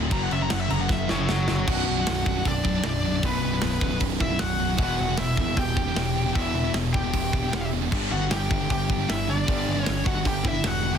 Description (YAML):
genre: heavy metal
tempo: 154 BPM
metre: 4/4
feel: straight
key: B minor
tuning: A4 = 440 Hz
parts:
  - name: heavy high-gain guitar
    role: riff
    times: 0.0-11.0 s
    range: B1 to G3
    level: -31 LUFS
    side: right 11 dB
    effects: distortion
  - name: sludgy distorted guitar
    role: riff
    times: 0.0-11.0 s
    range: B1 to G3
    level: -32 LUFS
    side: left 10 dB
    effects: overdrive
  - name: thick fuzz guitar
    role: riff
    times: 0.0-11.0 s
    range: B1 to G4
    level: -31 LUFS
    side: equal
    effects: distortion
  - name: growling picked electric bass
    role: bass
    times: 0.0-11.0 s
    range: B0 to G1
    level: -30 LUFS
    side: equal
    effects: overdrive
  - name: high-gain lead guitar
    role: melody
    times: 0.1-11.0 s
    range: B4 to A#5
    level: -30 LUFS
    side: left 3 dB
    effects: distortion
  - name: tight metal drum kit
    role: drums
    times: 0.1-10.7 s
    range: crash cymbal, hi-hat, kick drum, snare drum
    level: -28 LUFS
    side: equal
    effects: soft clipping on kick
  - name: high-gain lead guitar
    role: second line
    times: 1.1-11.0 s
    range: B3 to G4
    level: -34 LUFS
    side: right 4 dB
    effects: distortion
room: small room ambience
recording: dense, heavily limited modern master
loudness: -22 LUFS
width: side -8 dB against mid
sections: 0.0-1.7 A section; 1.7-11.0 B section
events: lead electric guitar solo 0.0-1.7; drum fill 0.9-1.7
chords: 0.1 F#; 1.7 Bm; 4.8 Em; 7.9 G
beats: | 0.11 0.50 0.89 1.28 | 1.67 2.06 2.46 2.85 | 3.24 3.63 4.02 4.41 | 4.80 5.19 5.58 5.97 | 6.36 6.75 7.14 7.53 | 7.92 8.31 8.70 9.09 | 9.48 9.87 10.26 10.65